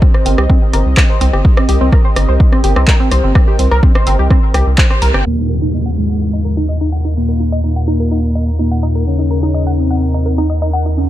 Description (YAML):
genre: melodic techno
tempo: 126 BPM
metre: 4/4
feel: straight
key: unclear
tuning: A4 = 442 Hz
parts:
  - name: warm analog pad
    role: sustained chords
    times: 0.0-11.1 s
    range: C4 to Bb5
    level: -24 LUFS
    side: equal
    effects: chorus, sidechain pumping
  - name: tight sequenced synth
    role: arpeggios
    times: 0.0-10.9 s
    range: C4 to G5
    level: -20 LUFS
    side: equal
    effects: chorus, sidechain pumping, ping-pong delay
  - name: electronic kick drum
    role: drums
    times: 0.0-4.9 s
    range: none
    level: -11 LUFS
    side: equal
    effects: overdrive
  - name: punchy analog drum machine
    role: drums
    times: 0.1-5.2 s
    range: handclaps, hi-hat, rim click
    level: -19 LUFS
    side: equal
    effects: none
  - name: round analog bass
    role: bass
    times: 0.3-11.1 s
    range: G1 to Eb2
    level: -14 LUFS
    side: equal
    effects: sidechain pumping
  - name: fat analog lead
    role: melody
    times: 5.3-11.1 s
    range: Ab3 to Db4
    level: -19 LUFS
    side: left 1 dB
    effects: wide subtle chorus, sidechain pumping, dub echo
  - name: downlifter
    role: sound effects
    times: 5.3-9.1 s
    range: none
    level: -24 LUFS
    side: left 2 dB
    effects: none
room: little or no reverb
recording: dark, warm production, low-pass filter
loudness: -11 LUFS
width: side -14 dB against mid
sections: 0.0-5.3 A section; 5.3-11.1 B section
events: filter sweep on synth arpeggio sound 0.0-5.3, 5.3-11.1; band accent 4.8; filter sweep on analog synth pad 5.3-11.1; filter sweep 5.3-11.1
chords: 0.0 Cm7; 5.3 Eb5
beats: 0.02 0.50 0.97 | 1.45 1.93 2.40 2.88 | 3.35 3.83 4.31 4.78 | 5.26 5.73 6.21 6.69 | 7.16 7.64 8.12 8.59 | 9.07 9.54 10.02 10.50 | 10.97